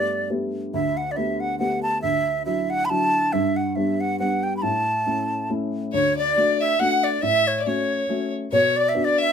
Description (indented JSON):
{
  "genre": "celtic folk",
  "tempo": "139 BPM",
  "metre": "3/4",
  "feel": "swing 55% on 8ths",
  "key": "unclear",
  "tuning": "A4 = 440 Hz",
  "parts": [
    { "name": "breathy bright wooden flute", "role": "melody", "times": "0.0-9.3 s", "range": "C#5 to B5", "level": "-22 LUFS", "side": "right 2 dB", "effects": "none" },
    { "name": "dark upright piano", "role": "accompaniment", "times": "0.0-9.3 s", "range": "D2 to G4", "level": "-25 LUFS", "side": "left 1 dB", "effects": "none" },
    { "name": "rich fiddle", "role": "second line", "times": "5.9-9.3 s", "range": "C#5 to F#5", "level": "-24 LUFS", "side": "left 5 dB", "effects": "none" }
  ],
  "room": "moderate small room ambience, RT60 0.5 s",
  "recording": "minimal, uncompressed stereo recording",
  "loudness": "-20 LUFS",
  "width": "side -7 dB against mid",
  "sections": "0.0-5.9 A section; 5.9-9.3 B section",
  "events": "none",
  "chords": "0.0 Gadd9; 2.0 Dadd9; 3.3 G; 4.6 A; 5.9 D; 7.2 A6; 8.5 Bm"
}